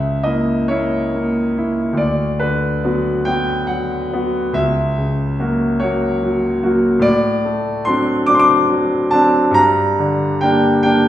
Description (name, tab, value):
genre	classical, romantic nocturne for solo piano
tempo	47 BPM (dotted quarters)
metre	6/8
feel	rubato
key	G minor from 7.0 s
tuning	A4 = 440 Hz
part	bright concert grand piano	solo	0.0-11.1 s	C#2 to D6	-14 LUFS	equal	none
room	wet recital hall reverb, RT60 1.4 s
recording	heard from further back in the room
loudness	-14 LUFS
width	side -12 dB against mid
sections	0.0-11.1 A section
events	none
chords	0.0 A#dim/C#; 2.0 Bm/D; 4.6 F#7/C#; 7.0 D7/A; 9.6 Gm